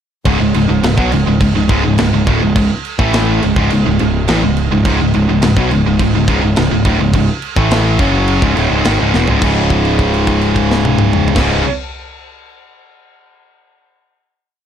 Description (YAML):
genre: heavy metal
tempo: 105 BPM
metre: 4/4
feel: straight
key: C# minor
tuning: A4 = 439 Hz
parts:
  - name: heavy high-gain guitar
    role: riff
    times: 0.3-11.6 s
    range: C#2 to A3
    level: -16 LUFS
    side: right 8 dB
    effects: distortion
  - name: high-gain distorted guitar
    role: riff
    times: 0.3-11.6 s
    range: C#2 to A3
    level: -17 LUFS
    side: left 11 dB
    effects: distortion
  - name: fuzz picked electric bass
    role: bass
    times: 0.3-11.6 s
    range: C#1 to B1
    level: -17 LUFS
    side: equal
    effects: overdrive
  - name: tight metal drum kit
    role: drums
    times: 0.3-11.5 s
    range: crash cymbal, kick drum, snare drum, toms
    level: -18 LUFS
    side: equal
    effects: none
room: little or no reverb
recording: dark, warm production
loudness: -11 LUFS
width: side -9 dB against mid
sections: 0.3-9.4 riff; 9.4-11.7 final chord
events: drum fill 9.1; held note 9.4-11.4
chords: 0.3 C#m; 9.4 C#5